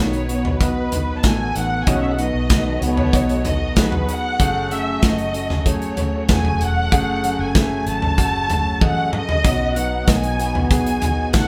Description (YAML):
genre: piano-driven pop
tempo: 95 BPM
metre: 4/4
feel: straight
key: B mixolydian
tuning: A4 = 440 Hz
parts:
  - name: warm studio violin section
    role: melody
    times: 0.0-11.5 s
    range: B4 to A5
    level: -26 LUFS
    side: equal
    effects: none
  - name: dark French horn section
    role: second line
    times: 0.0-3.4, 9.4-11.0 s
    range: B2 to D#4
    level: -27 LUFS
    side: equal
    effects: none
  - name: warm concert grand piano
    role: accompaniment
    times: 0.0-11.5 s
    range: B2 to F#5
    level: -29 LUFS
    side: equal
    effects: none
  - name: warm studio string section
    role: sustained chords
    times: 0.0-11.5 s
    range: B2 to B4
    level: -36 LUFS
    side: equal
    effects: none
  - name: fingerpicked plugged-in steel-string acoustic guitar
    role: riff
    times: 0.0-11.5 s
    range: F#2 to G#4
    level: -30 LUFS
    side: equal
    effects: none
  - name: vintage muted fingered electric bass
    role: bass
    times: 0.0-11.5 s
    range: E1 to C#2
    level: -28 LUFS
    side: equal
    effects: none
  - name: modern studio drum kit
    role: drums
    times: 0.1-11.5 s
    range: hi-hat, kick drum, snare drum, toms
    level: -21 LUFS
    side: equal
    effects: none
room: wet studio reverb, RT60 0.6 s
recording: band playing live in one room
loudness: -19 LUFS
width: mono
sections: 0.0-11.5 A section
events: drum fill 8.8-9.4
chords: 0.0 B; 4.4 F#madd9; 9.4 B